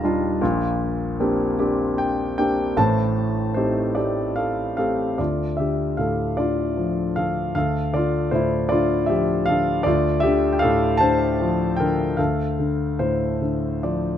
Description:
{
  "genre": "classical, lyrical solo piano",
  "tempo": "51 BPM (dotted quarters)",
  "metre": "6/8",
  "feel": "rubato",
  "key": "D minor from 5.2 s",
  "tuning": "A4 = 439 Hz",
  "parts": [
    { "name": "warm concert grand piano", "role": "solo", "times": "0.0-14.2 s", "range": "Eb1 to Bb5", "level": "-19 LUFS", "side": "left 1 dB", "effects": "none" }
  ],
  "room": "light reverb",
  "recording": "close, detailed microphones",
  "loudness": "-19 LUFS",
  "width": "side -10 dB against mid",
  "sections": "0.0-5.2 A section; 5.2-14.2 B section",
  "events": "none",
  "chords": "0.4 Bb69; 2.8 Am7b5; 5.2 Dm; 7.6 Dm11; 9.9 Dm7; 12.2 Dm"
}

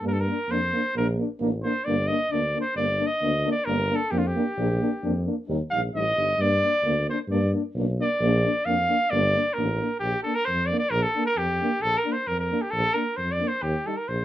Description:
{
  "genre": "balkan folk, Balkan brass band",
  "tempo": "132 BPM",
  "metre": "2/4",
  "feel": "straight",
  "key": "G minor, Bb major from 10.0 s",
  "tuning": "A4 = 442 Hz",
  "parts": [
    { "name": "warm cornet", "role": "melody", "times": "0.0-14.2 s", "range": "F4 to F5", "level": "-25 LUFS", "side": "equal", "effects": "none" },
    { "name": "warm euphonium", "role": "accompaniment", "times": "0.0-14.0 s", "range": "D4 to Eb4", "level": "-32 LUFS", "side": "left 9 dB", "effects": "none" },
    { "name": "warm euphonium", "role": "accompaniment", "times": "0.0-13.9 s", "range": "G3 to Bb3", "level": "-30 LUFS", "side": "right 4 dB", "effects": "none" },
    { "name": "mellow tuba", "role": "bass", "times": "0.0-14.2 s", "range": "G1 to G2", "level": "-27 LUFS", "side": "equal", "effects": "none" }
  ],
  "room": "moderate studio reverb, RT60 0.5 s",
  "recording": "minimal, uncompressed stereo recording",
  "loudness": "-22 LUFS",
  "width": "side -12 dB against mid",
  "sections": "0.0-10.0 A section; 10.0-14.2 B section",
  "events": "cornet solo 0.0-10.0",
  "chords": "0.0 Gm; 1.0 Bb; 1.9 Gm; 4.6 Bb; 5.5 Eb; 6.4 Gm; 8.2 Bb; 9.1 Gm; 10.0 Bb; 13.6 Eb"
}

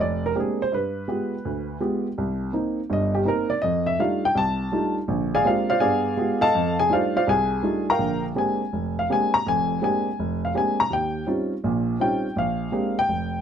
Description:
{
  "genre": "solo jazz",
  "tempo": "165 BPM",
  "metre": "4/4",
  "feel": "swing 66% on 8ths",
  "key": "Bb mixolydian",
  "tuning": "A4 = 440 Hz",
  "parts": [
    { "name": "dark upright piano", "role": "solo", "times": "0.0-13.4 s", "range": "F1 to Bb5", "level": "-21 LUFS", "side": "equal", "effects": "none" }
  ],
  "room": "light reverb",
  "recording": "close, detailed microphones",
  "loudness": "-21 LUFS",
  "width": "side -8 dB against mid",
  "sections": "0.0-8.0 A section; 8.0-13.4 A section",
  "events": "upright piano solo 0.0-13.4",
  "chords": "0.0 Bb13; 0.7 G7b9; 2.2 Cm7; 3.6 F13; 5.1 Bb13; 5.8 G7b9; 6.5 F13; 8.0 Bb13; 10.9 Eb13; 12.4 Bb13"
}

